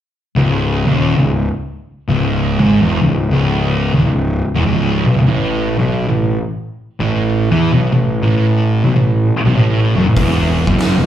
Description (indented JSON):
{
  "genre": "stoner and doom metal",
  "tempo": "98 BPM",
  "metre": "4/4",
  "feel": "swing 65% on 8ths",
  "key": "C# minor",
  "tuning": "A4 = 440 Hz",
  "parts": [
    { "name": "thick fuzz guitar", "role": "riff", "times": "0.4-11.1 s", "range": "C#2 to E3", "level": "-16 LUFS", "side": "left 4 dB", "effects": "distortion" },
    { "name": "thick fuzz guitar", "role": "riff", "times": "0.4-11.1 s", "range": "C#2 to E3", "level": "-18 LUFS", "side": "right 8 dB", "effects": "distortion" },
    { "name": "fuzz picked electric bass", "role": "bass", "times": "0.4-11.1 s", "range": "C#1 to E2", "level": "-17 LUFS", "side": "equal", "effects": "overdrive" },
    { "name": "oversized low-tuned drum kit", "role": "drums", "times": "10.2-11.0 s", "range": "hi-hat, kick drum, snare drum", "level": "-17 LUFS", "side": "equal", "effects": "none" }
  ],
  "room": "studio ambience",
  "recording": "live gig heard through the venue's PA, club reverb",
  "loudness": "-12 LUFS",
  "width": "side -10 dB against mid",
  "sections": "0.4-11.1 A section",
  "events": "none",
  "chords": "0.4 C#m; 5.3 A5; 10.2 E5",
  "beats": "| 0.36 0.98 1.59 2.21 | 2.82 3.43 4.05 4.66 | 5.27 5.89 6.50 7.11 | 7.72 8.34 8.95 9.56 | 10.17 10.79"
}